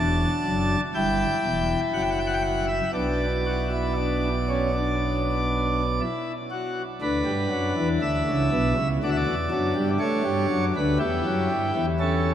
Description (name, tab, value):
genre	classical, baroque-style 3-part fugue for pipe organ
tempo	60 BPM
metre	4/4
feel	straight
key	B minor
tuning	A4 = 440 Hz
part	pipe organ, principal chorus	solo	0.0-12.3 s	E1 to A5	-22 LUFS	equal	none
room	wet huge ambient reverb, RT60 7.7 s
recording	in a vast, echoing space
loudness	-22 LUFS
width	side -10 dB against mid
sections	0.0-7.0 A section; 7.0-12.3 B section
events	none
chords	0.0 Dadd9; 0.9 Em/G; 1.9 Emadd9/F#; 3.0 Bm; 7.0 Bm/D; 11.0 Em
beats	0.94 1.94 | 2.95 3.97 4.99 6.01 | 7.02 8.02 9.02 10.02 | 11.01 12.01